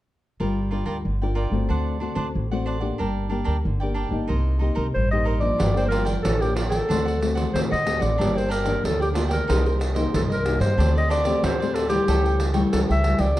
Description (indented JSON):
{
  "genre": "samba and choro",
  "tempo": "92 BPM",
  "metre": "4/4",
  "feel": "straight",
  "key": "G minor",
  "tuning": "A4 = 441 Hz",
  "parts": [
    { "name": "cavaquinho", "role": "accompaniment", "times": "0.4-13.4 s", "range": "D4 to G5", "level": "-31 LUFS", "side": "right 4 dB", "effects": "none" },
    { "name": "nylon-string guitar", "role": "accompaniment", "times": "0.4-13.4 s", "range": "G2 to Bb4", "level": "-27 LUFS", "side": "left 4 dB", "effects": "none" },
    { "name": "upright bass", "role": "bass", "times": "0.4-13.4 s", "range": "G1 to G2", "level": "-24 LUFS", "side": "equal", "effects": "none" },
    { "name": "warm clarinet", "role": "melody", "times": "4.9-13.4 s", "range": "F4 to E5", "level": "-25 LUFS", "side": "left 1 dB", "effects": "plate reverb" },
    { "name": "pandeiro", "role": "percussion", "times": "5.6-13.4 s", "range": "none", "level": "-27 LUFS", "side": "right 2 dB", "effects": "none" }
  ],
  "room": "moderate large studio reverb, RT60 0.9 s",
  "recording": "dark, warm production",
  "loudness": "-20 LUFS",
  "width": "side -15 dB against mid",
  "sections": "0.4-5.6 A section; 5.6-13.4 B section",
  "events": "none",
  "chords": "0.4 Gm7; 1.7 D7; 3.0 Gm; 4.3 Cm7; 5.6 Gm7; 6.9 D7; 8.2 Gm; 9.5 Cm7; 10.8 D7sus4; 12.1 A7/C#"
}